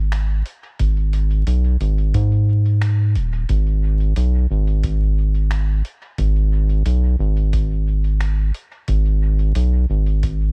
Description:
ambient dub; 89 BPM; 4/4; straight; G# minor; A4 = 442 Hz
round analog bass; bass; 0.0-10.5 s; D#1 to G#2; -19 LUFS; equal
lo-fi sampler-style drum kit; drums; 0.1-10.4 s; finger snaps, hi-hat; -38 LUFS; equal; dub echo
electronic kick drum; drums; 0.8-10.4 s; -26 LUFS; equal
digital ambience; echo-heavy mix, vinyl crackle; -19 LUFS; mono
0.0-10.5 A section

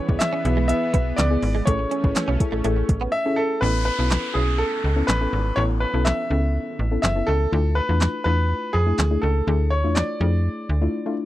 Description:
dance-pop; 123 BPM; 4/4; straight; A major; A4 = 442 Hz
bright concert grand piano; melody; 0.0-11.1 s; G#4 to E5; -25 LUFS; equal; tape echo
lush unison pad; sustained chords; 0.0-3.6 s; E3 to C#4; -30 LUFS; right 2 dB; chorus, sidechain pumping
direct-recorded clean electric guitar; riff; 0.0-3.1 s; G#3 to C#4; -28 LUFS; right 6 dB; ensemble chorus
soft round pluck; accompaniment; 0.1-11.3 s; A3 to D5; -27 LUFS; left 2 dB; chorus, sidechain pumping
slap-like FM bass; bass; 0.1-10.9 s; F#1 to F2; -21 LUFS; equal; sidechain pumping
smooth R&B drum kit; drums; 0.1-10.1 s; handclaps, hi-hat, kick drum, snare drum; -21 LUFS; equal; overdrive
downlifter; sound effects; 3.6-7.5 s; -34 LUFS; right 1 dB
little or no reverb; dry, close 1970s-style studio recording; -19 LUFS; side -15 dB against mid
0.0-3.6 A section; 3.6-11.3 B section
silent gap 3.1-3.6; break 10.9-11.3
0.0 E/B; 1.7 Amaj7; 3.6 Aadd9; 7.5 Dmadd9

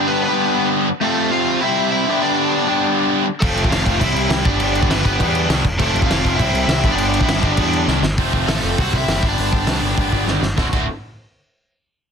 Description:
punk rock; 201 BPM; 4/4; straight; A4 = 440 Hz
crunchy overdriven guitar; melody; 0.0-10.3 s; A3 to F#5; -23 LUFS; equal; ping-pong delay
distorted electric guitar; riff; 0.0-10.8 s; D2 to C5; -18 LUFS; equal; overdrive
fuzz picked electric bass; bass; 3.4-10.9 s; D1 to E2; -22 LUFS; equal; overdrive
loose indie drum kit; drums; 3.4-10.8 s; crash cymbal, hi-hat, kick drum, snare drum; -19 LUFS; equal
light reverb; dense, heavily limited modern master; -15 LUFS; side -6 dB against mid
0.0-8.2 A section; 8.2-10.6 B section; 10.6-11.8 C section
drum fill 7.9, 10.3-10.6
0.0 G; 1.0 F; 1.6 C; 2.1 G; 3.4 F; 4.0 C; 4.4 G; 5.8 F; 6.4 C; 6.8 G; 8.2 F; 8.8 C; 9.2 G; 10.6 D

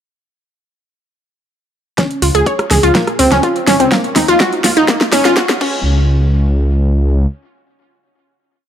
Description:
progressive house; 124 BPM; 4/4; straight; Db major; A4 = 440 Hz
wide unison pluck; arpeggios; 2.0-6.1 s; Bb3 to Db5; -13 LUFS; equal; sidechain pumping, tape echo
deep house drum kit; drums; 2.0-5.7 s; crash cymbal, hi-hat, rim click, snare drum; -16 LUFS; equal
electronic kick drum; drums; 2.0-5.7 s; -22 LUFS; equal; high-pass filter on kick
dark detuned saw bass; bass; 2.2-7.3 s; Ab1 to Gb2; -14 LUFS; equal; sidechain pumping
moderate lush hall reverb, RT60 2.3 s; high-pass filter; -11 LUFS; side -9 dB against mid
2.0-5.9 build; 5.9-8.7 final hit
build-up 2.0-5.9; drum fill 2.0-5.9
2.0 Db; 2.9 Bbmadd9/Db; 3.9 Ebmadd9; 4.9 Gbmaj7; 5.6 N.C.

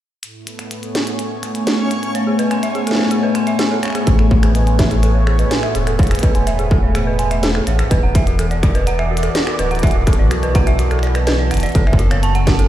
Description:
IDM; 125 BPM; 4/4; straight; A major; A4 = 440 Hz
phased analog pad; sustained chords; 0.2-12.7 s; A2 to E6; -20 LUFS; equal; phaser, chorus
glitchy drum kit; drums; 0.2-12.7 s; finger snaps, hi-hat, snare drum; -24 LUFS; equal; small room ambience, tape echo
backwards swelling texture; texture; 1.3-4.1, 11.8-12.7 s; B3 to C#5; -29 LUFS; left 2 dB; built-in reverb
dark detuned synth bell; arpeggios; 2.1-12.6 s; F#4 to A5; -22 LUFS; right 3 dB; chorus, low-pass filter, tape echo
warm sub bass; bass; 4.1-12.7 s; D1 to B1; -17 LUFS; equal
electronic kick drum; drums; 4.1-12.6 s; -15 LUFS; equal; distortion, overdrive, small room ambience
little or no reverb; played on a big sound system in a bare room, stone room reverb; -14 LUFS; side -12 dB against mid
0.2-4.1 A section; 4.1-12.7 B section
filter sweep on synth bell 4.1-12.7
0.2 Amaj9; 7.9 E9sus4; 11.8 F#m7

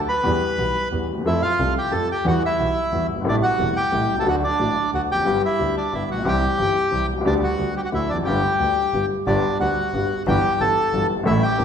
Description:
tango; 180 BPM; 3/4; rubato; G major; A4 = 440 Hz
warm upright piano; accompaniment; 0.0-11.6 s; E1 to A4; -23 LUFS; left 2 dB
clear double bass; bass; 0.0-11.6 s; E1 to F2; -27 LUFS; right 2 dB
bandoneon; melody; 0.1-11.6 s; D4 to B5; -22 LUFS; equal
wet recital hall reverb, RT60 1.5 s; recorded in a church or concert hall; -18 LUFS; side -7 dB against mid
0.0-9.3 A section; 9.3-11.6 B section
0.3 Em; 1.3 F; 2.3 Emadd9; 3.3 Am7; 4.3 D; 5.3 G; 6.3 C; 7.3 G/D; 7.9 Dadd9; 8.3 G; 10.3 Emadd9/G

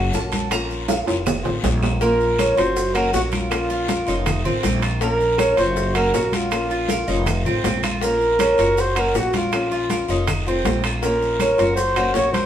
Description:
latin, Cuban son and guajira; 160 BPM; 4/4; straight; Bb minor; A4 = 440 Hz
nylon-string guitar; accompaniment; 0.0-12.5 s; Eb3 to Gb4; -26 LUFS; left 3 dB
Cuban tres; arpeggios; 0.0-12.5 s; Bb3 to Bb5; -25 LUFS; right 2 dB
upright bass; bass; 0.0-12.5 s; F1 to Bb1; -25 LUFS; equal
bongos; percussion; 0.1-12.5 s; -30 LUFS; left 6 dB
congas; percussion; 0.1-12.5 s; -29 LUFS; left 1 dB
guiro; percussion; 0.1-12.5 s; -34 LUFS; left 4 dB
maracas; percussion; 0.1-12.5 s; -37 LUFS; right 4 dB
timbales; percussion; 0.3-12.5 s; -28 LUFS; right 6 dB
claves; percussion; 0.5-12.2 s; -34 LUFS; right 2 dB
trumpet with bucket mute; melody; 2.0-12.5 s; F4 to Db5; -21 LUFS; right 1 dB
moderate stone room reverb, RT60 1.1 s; band playing live in one room; -17 LUFS; side -10 dB against mid
0.0-2.0 A section; 2.0-12.5 B section
Cuban tres solo 0.0-2.0; drum fill 0.9-2.0
0.0 Gb; 0.5 Bbm; 1.3 F7; 2.0 Bbm; 2.8 Gb; 3.5 Bbm; 4.3 F7; 5.0 Bbm; 5.8 Gb; 6.5 Bbm; 7.3 F7; 8.0 Bbm; 8.8 Gb; 9.5 Bbm; 10.3 F7; 11.0 Bbm; 11.8 Gb

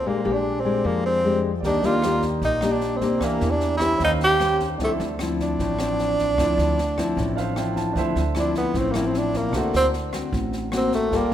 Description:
bossa nova; 152 BPM; 4/4; straight; D minor; A4 = 440 Hz
breathy tenor saxophone; melody; 0.0-11.3 s; A3 to G4; -23 LUFS; right 1 dB
nylon-string guitar; accompaniment; 0.0-11.3 s; A2 to C5; -25 LUFS; left 3 dB
upright bass; bass; 0.0-11.3 s; G1 to F2; -28 LUFS; right 1 dB
clear baby grand piano; accompaniment; 1.6-11.3 s; Db4 to A5; -32 LUFS; right 5 dB
open jazz drum kit; drums; 1.6-11.3 s; kick drum, rim click, snare drum; -33 LUFS; equal
light reverb; minimal, uncompressed stereo recording; -20 LUFS; side -11 dB against mid
0.0-8.0 A section; 8.0-11.3 B section
grand piano fill 7.2-8.0; tenor saxophone solo 8.0-11.3
0.0 Bb13; 1.6 Ebmaj7; 3.2 Em7b5; 4.0 Eb13; 4.8 Dm9; 9.5 D7b13

